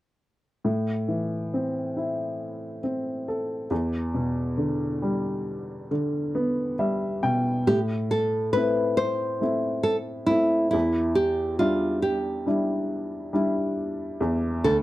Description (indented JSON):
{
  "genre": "pop",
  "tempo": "69 BPM",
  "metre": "4/4",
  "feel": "straight",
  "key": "A minor",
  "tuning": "A4 = 440 Hz",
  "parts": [
    { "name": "warm upright piano", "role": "accompaniment", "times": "0.6-14.8 s", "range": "D2 to G5", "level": "-25 LUFS", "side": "equal", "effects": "none" },
    { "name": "nylon-string guitar", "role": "melody", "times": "7.7-14.8 s", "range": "E4 to C5", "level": "-23 LUFS", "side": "equal", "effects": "slapback echo" }
  ],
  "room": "light reverb",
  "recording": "dry, close 1970s-style studio recording",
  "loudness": "-23 LUFS",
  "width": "side -16 dB against mid",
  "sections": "0.6-7.7 A section; 7.7-14.8 B section",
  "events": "upright piano fill 6.3-7.7",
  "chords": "0.6 Am; 3.7 Em7; 7.7 Am; 10.7 Em7",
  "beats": "| 0.65 1.53 2.40 3.27 | 4.14 5.02 5.90 6.78 | 7.67 8.55 9.43 10.30 | 11.18 12.05 12.91 13.78 | 14.65"
}